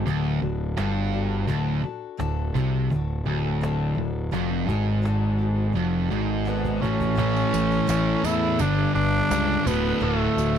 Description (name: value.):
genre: classic rock.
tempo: 84 BPM.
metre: 4/4.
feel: straight.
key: D mixolydian.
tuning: A4 = 440 Hz.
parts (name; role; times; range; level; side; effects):
picked acoustic archtop guitar; accompaniment; 0.0-10.6 s; A2 to B4; -35 LUFS; left 10 dB; none.
overdriven electric guitar; riff; 0.0-10.6 s; D2 to A3; -27 LUFS; right 9 dB; none.
sludgy distorted guitar; riff; 0.0-10.6 s; D2 to A3; -27 LUFS; left 8 dB; overdrive.
fuzz picked electric bass; bass; 0.0-10.6 s; D1 to E2; -27 LUFS; equal; overdrive.
cajon; drums; 0.1-10.1 s; none; -31 LUFS; right 1 dB; none.
growling tenor saxophone; melody; 6.5-10.6 s; A3 to E4; -26 LUFS; right 1 dB; none.
tambourine; percussion; 7.4-10.6 s; none; -40 LUFS; right 24 dB; none.
room: little or no reverb.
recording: dry, close 1970s-style studio recording.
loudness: -21 LUFS.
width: side -8 dB against mid.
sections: 0.0-7.2 A section; 7.2-10.6 B section.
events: drum fill 5.8-7.2.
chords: 0.0 D; 7.2 A; 8.6 G; 9.7 D.